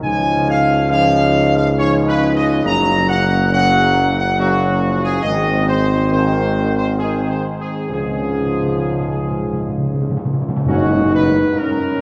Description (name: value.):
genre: classical, ceremonial fanfare.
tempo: 63-70 BPM.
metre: 3/4.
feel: straight.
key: F# major.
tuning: A4 = 440 Hz.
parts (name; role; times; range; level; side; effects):
clear trumpet section; melody; 0.0-12.0 s; F#4 to A#5; -21 LUFS; equal; none.
bright trombone section; sustained chords; 0.0-11.0 s; G#2 to C#4; -27 LUFS; equal; none.
dark French horn section; sustained chords; 0.0-12.0 s; G#3 to D#4; -23 LUFS; equal; none.
warm tuba; bass; 0.0-11.4 s; F#1 to C#2; -22 LUFS; equal; none.
timpani; percussion; 0.0-1.3, 7.9-12.0 s; F#2 to C#3; -25 LUFS; equal; none.
tam-tam; percussion; 10.7-12.0 s; none; -29 LUFS; equal; none.
room: wet church reverb, RT60 3.3 s.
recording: worn, warbling old tape, cassette tape, warbly pitch drift.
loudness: -16 LUFS.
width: mono.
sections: 0.0-10.7 A section; 10.7-12.0 B section.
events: timpani fill 7.9-10.7; band accent 10.7-11.6.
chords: 0.0 C#add9; 2.7 F#; 5.2 G#; 7.9 C#; 10.7 F#.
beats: | 0.03 0.91 1.78 | 2.65 3.52 4.38 | 5.24 6.11 6.99 | 7.91 8.83 9.75 | 10.68 11.57.